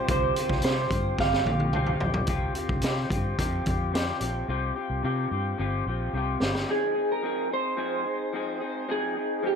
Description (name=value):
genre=indie pop, bedroom pop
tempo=109 BPM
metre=4/4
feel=straight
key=unclear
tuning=A4 = 440 Hz
part: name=electric slide guitar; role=melody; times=0.0-2.0, 6.7-9.6 s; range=G4 to F5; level=-28 LUFS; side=right 3 dB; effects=wide subtle chorus, slapback echo
part: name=electric guitar through a small old amp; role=accompaniment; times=0.0-9.6 s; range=C3 to Ab4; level=-30 LUFS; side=left 3 dB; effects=wide subtle chorus, vibrato effect
part: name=hollow soft pad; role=sustained chords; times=0.0-2.2 s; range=C3 to F4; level=-42 LUFS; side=equal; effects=none
part: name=vintage muted fingered electric bass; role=bass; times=0.0-6.6 s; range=G1 to C3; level=-30 LUFS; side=equal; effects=none
part: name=raw garage drum kit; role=drums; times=0.1-6.7 s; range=hi-hat, kick drum, snare drum, toms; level=-28 LUFS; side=equal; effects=none
room=light reverb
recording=none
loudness=-25 LUFS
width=side -6 dB against mid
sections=0.0-2.3 A section; 2.3-6.7 B section; 6.7-9.6 C section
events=drum fill 1.2-2.3, 4.5-6.7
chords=0.0 Csus4; 6.7 Fm7